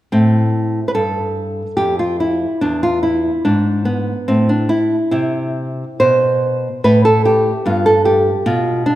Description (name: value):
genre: classical, baroque-style dance for nylon-string guitar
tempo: 72 BPM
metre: 3/4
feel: rubato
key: A minor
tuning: A4 = 439 Hz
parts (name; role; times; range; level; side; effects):
- nylon-string guitar; solo; 0.1-9.0 s; E2 to C5; -14 LUFS; equal; none
room: wet recital hall reverb, RT60 1.7 s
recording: recorded in a church or concert hall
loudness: -14 LUFS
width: side -14 dB against mid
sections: 0.1-9.0 A section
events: none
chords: 0.1 Am; 2.6 E; 4.3 N.C.; 5.1 C; 7.7 G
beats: | 0.13 0.96 1.79 | 2.63 3.46 4.29 | 5.13 6.01 6.85 | 7.67 8.47